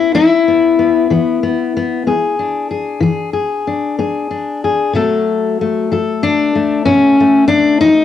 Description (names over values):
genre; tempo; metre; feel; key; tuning
acoustic country blues, solo or duo; 63 BPM (dotted quarters); 12/8; straight; E mixolydian; A4 = 441 Hz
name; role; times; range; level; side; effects
fingerpicked steel-string acoustic guitar; solo; 0.0-8.0 s; B2 to A4; -12 LUFS; left 4 dB; cassette tape
room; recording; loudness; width
wet studio reverb, RT60 0.6 s; home recording on cassette; -12 LUFS; side -10 dB against mid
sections
0.0-8.0 A section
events
none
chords
0.0 E7; 4.9 B7(no3)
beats
0.17 | 1.12 2.08 3.04 3.99 | 4.95 5.91 6.87 7.82